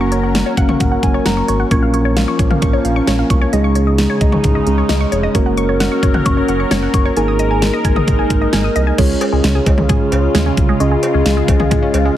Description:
synth-pop; 132 BPM; 4/4; straight; Db major; A4 = 438 Hz
muted felt-like synth keys; accompaniment; 0.0-12.2 s; Ab3 to Db6; -18 LUFS; right 1 dB; chorus
phased analog pad; sustained chords; 0.0-12.2 s; Db3 to Bb4; -20 LUFS; left 1 dB; phaser, chorus
resonant blip pluck; arpeggios; 0.0-12.2 s; Ab3 to Eb6; -22 LUFS; left 1 dB; phaser, analog delay
round analog bass; bass; 0.0-12.1 s; F1 to Eb2; -18 LUFS; equal
pop drum kit; drums; 0.1-12.0 s; cowbell, crash cymbal, hi-hat, kick drum, snare drum, toms; -16 LUFS; equal
light reverb; heavily compressed radio sound, multiband compression; -12 LUFS; side -12 dB against mid
0.0-9.0 A section; 9.0-12.2 B section
synth keys fill 0.3-1.7
0.0 Gb; 1.7 Bbm; 3.5 Dbsus2; 5.3 Gb; 7.2 Absus2; 9.0 Db

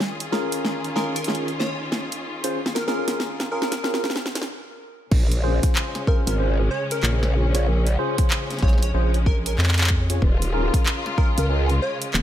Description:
glitch hop; 94 BPM; 4/4; swing 62% on 16ths; Bb minor; A4 = 439 Hz
warm studio string section; sustained chords; 0.0-12.2 s; Db3 to Ab4; -31 LUFS; left 2 dB; sidechain pumping
pop drum kit; drums; 0.0-12.2 s; crash cymbal, handclaps, hi-hat, snare drum; -26 LUFS; equal; studio reverb
bright tine electric piano; stabs; 0.3-11.7 s; Db4 to Db5; -28 LUFS; equal; phaser, sidechain pumping, tape echo
plucky unison lead; melody; 1.0-12.0 s; Bb4 to Db5; -31 LUFS; right 1 dB; vintage 12-bit sampler grit, tape echo
growl bass; bass; 5.1-12.2 s; Eb1 to Db2; -20 LUFS; equal; chorus, overdrive
electronic kick drum; drums; 5.1-11.3 s; -20 LUFS; equal; studio reverb
rubbery square bass; bass; 8.6-10.2 s; Bb1 to F2; -20 LUFS; equal
digital ambience; high-pass filter; -20 LUFS; side -11 dB against mid
0.0-5.1 A section; 5.1-12.2 B section
build-up 0.0-5.1; drum fill 0.0-4.5; stop 4.5-5.1; drop 5.1-12.2
0.0 Eb9sus4; 5.1 Bbm9; 10.2 Eb9sus4

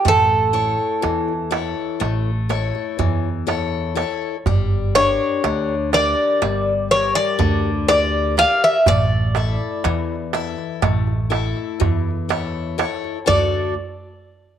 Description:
greek folk, Greek bouzouki band; 122 BPM (eighths); 9/8; straight; A4 = 440 Hz
Greek bouzouki; melody; 0.0-13.7 s; A4 to F5; -18 LUFS; equal
picked steel-string acoustic guitar; accompaniment; 0.0-13.7 s; D3 to E5; -25 LUFS; left 9 dB
upright bass; bass; 0.1-13.7 s; G1 to E2; -24 LUFS; equal
darbuka; percussion; 0.1-13.7 s; -23 LUFS; right 5 dB
moderate spring reverb, RT60 1.5 s, small room reverb; 1960s-style stereo; -17 LUFS; side -9 dB against mid
0.0-13.3 A section; 13.3-14.6 B section
0.1 A; 4.5 Gm; 8.9 A; 13.3 D

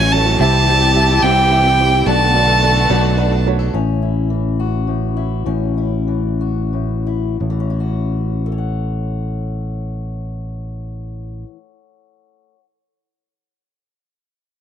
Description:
folk; 57-72 BPM (dotted quarters); 6/8; straight; A4 = 440 Hz
clear fiddle; melody; 0.0-3.5 s; G5 to A5; -14 LUFS; right 2 dB; slapback echo
dark baby grand piano; accompaniment; 0.0-3.8 s; A1 to G5; -22 LUFS; right 14 dB
picked steel-string acoustic guitar; accompaniment; 0.0-3.7 s; B2 to A4; -21 LUFS; left 11 dB
warm studio string section; sustained chords; 0.0-3.7 s; D3 to G4; -23 LUFS; equal
fingered electric bass; bass; 0.0-11.4 s; A1 to C2; -18 LUFS; equal
fingerpicked steel-string acoustic guitar; accompaniment; 3.7-12.6 s; A2 to F#5; -24 LUFS; left 14 dB
small room ambience; 1960s-style stereo with parts hard left and right; -14 LUFS; side -9 dB against mid
0.0-3.7 A section; 3.7-7.4 B section; 7.4-11.6 C section
slowing down 3.7-7.4
0.4 C; 2.1 Bm7; 3.7 A6

